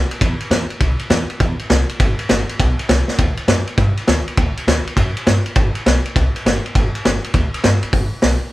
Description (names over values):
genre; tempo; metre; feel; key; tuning
rockabilly; 202 BPM; 4/4; swing 65% on 8ths; G major; A4 = 440 Hz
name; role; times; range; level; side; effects
upright bass; bass; 0.0-8.4 s; G1 to G2; -19 LUFS; equal; none
vintage drum kit; drums; 0.1-8.3 s; hi-hat, kick drum, ride cymbal, snare drum; -16 LUFS; equal; none
room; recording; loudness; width
light reverb; band playing live in one room; -15 LUFS; side -17 dB against mid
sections
0.0-7.9 A section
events
drum fill 3.0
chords
none